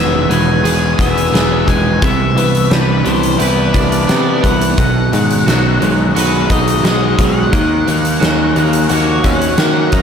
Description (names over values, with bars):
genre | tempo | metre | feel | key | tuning
rock, shoegaze and dream pop | 87 BPM | 4/4 | straight | E lydian | A4 = 440 Hz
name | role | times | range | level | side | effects
octave-fuzz lead guitar | melody | 0.0-10.0 s | B4 to A#5 | -20 LUFS | left 3 dB | distortion, analog delay
twangy electric guitar | arpeggios | 0.0-10.0 s | D#3 to G#4 | -24 LUFS | right 6 dB | analog chorus, analog delay
overdriven electric guitar | riff | 0.0-10.0 s | E2 to D#4 | -18 LUFS | left 8 dB | lush chorus
overdriven semi-hollow guitar | riff | 0.0-10.0 s | E2 to G#4 | -17 LUFS | right 6 dB | reverse reverb
picked electric bass | bass | 0.0-10.0 s | E1 to D#3 | -17 LUFS | left 1 dB | none
huge arena drum kit | drums | 0.3-10.0 s | hi-hat, kick drum, snare drum | -17 LUFS | equal | none
room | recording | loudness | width
moderate plate reverb, RT60 1.7 s, studio ambience | dreamy mix soaked in reverb | -11 LUFS | side -7 dB against mid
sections
0.0-10.0 A section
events
none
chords
0.0 Emaj7; 2.0 Cmaj9; 4.8 B6; 7.5 D#m7